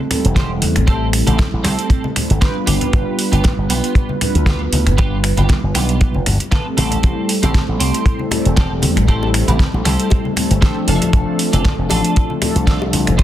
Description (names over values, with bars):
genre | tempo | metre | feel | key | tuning
nu-disco, nu disco | 117 BPM | 4/4 | swing 55% on 16ths | A minor | A4 = 440 Hz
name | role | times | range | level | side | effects
mellow synth brass | accompaniment | 0.0-13.2 s | F3 to B4 | -20 LUFS | equal | chorus, cassette tape, sidechain pumping, digital delay
pop drum kit | drums | 0.1-13.2 s | finger snaps, hi-hat, snare drum | -22 LUFS | right 1 dB | none
congas and bongos | percussion | 0.1-13.2 s | none | -25 LUFS | left 3 dB | none
slap bass with an envelope filter | bass | 0.2-13.2 s | E1 to E2 | -17 LUFS | equal | sidechain pumping
twelve-string electric guitar | riff | 0.4-13.2 s | B3 to G5 | -25 LUFS | right 3 dB | ensemble chorus, digital delay
kick drum | drums | 0.4-13.2 s | none | -14 LUFS | equal | none
room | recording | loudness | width
studio ambience | dense, heavily limited modern master | -13 LUFS | side -12 dB against mid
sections
0.0-13.2 A section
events
clean electric guitar fill 10.4-11.1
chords
0.0 Am7; 2.7 G7; 6.8 Am7; 10.9 F6